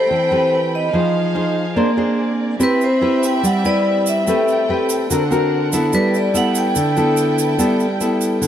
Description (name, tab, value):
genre	bossa nova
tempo	144 BPM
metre	4/4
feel	straight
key	G major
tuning	A4 = 440 Hz
part	vibraphone with medium hard mallets	melody	0.0-8.5 s	B4 to G5	-20 LUFS	equal	none
part	nylon-string guitar	accompaniment	0.0-8.5 s	D3 to C5	-17 LUFS	equal	none
part	warm studio violin section	sustained chords	0.0-8.5 s	C4 to B5	-26 LUFS	right 1 dB	none
part	tube shaker	percussion	2.6-8.5 s	none	-28 LUFS	right 6 dB	none
room	moderate echo chamber reverb, RT60 2.6 s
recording	none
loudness	-15 LUFS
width	side -10 dB against mid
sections	0.0-8.5 A section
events	none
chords	0.0 Am9; 0.9 Fm7; 1.8 Bb9; 2.6 Cmaj7; 4.3 Am9; 5.1 D7b13; 5.9 G69